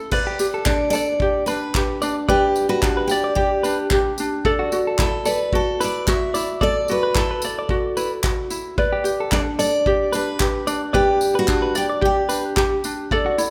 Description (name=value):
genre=acoustic pop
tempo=111 BPM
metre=4/4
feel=swing 55% on 16ths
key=unclear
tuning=A4 = 440 Hz
part: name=ukulele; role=accompaniment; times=0.0-13.5 s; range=C#4 to D5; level=-24 LUFS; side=equal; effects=none
part: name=unplugged drum kit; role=drums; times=0.1-13.5 s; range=crash cymbal, handclaps, kick drum, tambourine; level=-27 LUFS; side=equal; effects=none
part: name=direct-recorded clean electric guitar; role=arpeggios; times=0.3-13.4 s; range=F#4 to D5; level=-31 LUFS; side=equal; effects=none
part: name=picked steel-string acoustic guitar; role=melody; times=0.7-12.5 s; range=F#4 to E5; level=-24 LUFS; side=equal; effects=none
room=wet recital hall reverb, RT60 1.6 s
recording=recorded in a church or concert hall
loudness=-20 LUFS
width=mono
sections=0.1-13.5 A section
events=none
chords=0.1 G; 4.5 Dadd9; 8.8 G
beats=| 0.12 0.66 1.20 1.74 | 2.28 2.83 3.37 3.91 | 4.45 4.99 5.53 6.07 | 6.62 7.16 7.70 8.24 | 8.78 9.32 9.86 10.40 | 10.95 11.49 12.03 12.57 | 13.11